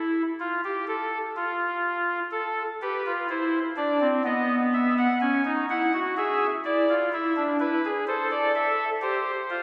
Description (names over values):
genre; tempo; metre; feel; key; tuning
classical, baroque-style 4-part fugue for pipe organ; 63 BPM; 4/4; straight; unclear; A4 = 440 Hz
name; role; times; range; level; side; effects
pipe organ, soft reed; solo; 0.0-9.6 s; B3 to G#5; -26 LUFS; equal; none
room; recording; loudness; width
wet church reverb, RT60 2.6 s; recorded in a church or concert hall, small room reverb; -26 LUFS; mono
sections
0.0-9.6 A section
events
none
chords
0.0 N.C.; 2.3 Am; 4.3 B; 6.2 E; 8.1 Am